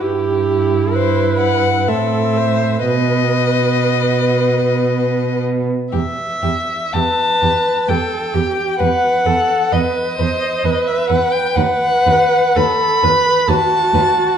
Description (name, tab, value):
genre	classical, slow romantic movement for string quartet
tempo	57-68 BPM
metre	3/4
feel	rubato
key	E minor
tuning	A4 = 442 Hz
part	dark violin	second line	0.0-14.4 s	B3 to B5	-18 LUFS	left 2 dB	none
part	rich viola	accompaniment	0.0-14.4 s	F#4 to C5	-19 LUFS	right 2 dB	none
part	rich cello	bass	0.0-14.0 s	D#2 to B2	-20 LUFS	right 5 dB	none
part	warm violin	melody	0.9-14.0 s	G4 to F#5	-23 LUFS	left 8 dB	none
room	wet recital hall reverb, RT60 1.3 s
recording	dark, warm production, nothing above 10.5 kHz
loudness	-13 LUFS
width	side -8 dB against mid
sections	0.0-5.9 A section; 5.9-14.4 B section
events	none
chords	0.0 Em/G; 1.9 Am; 2.9 B; 5.9 Em; 8.8 B/E; 11.6 B7/D#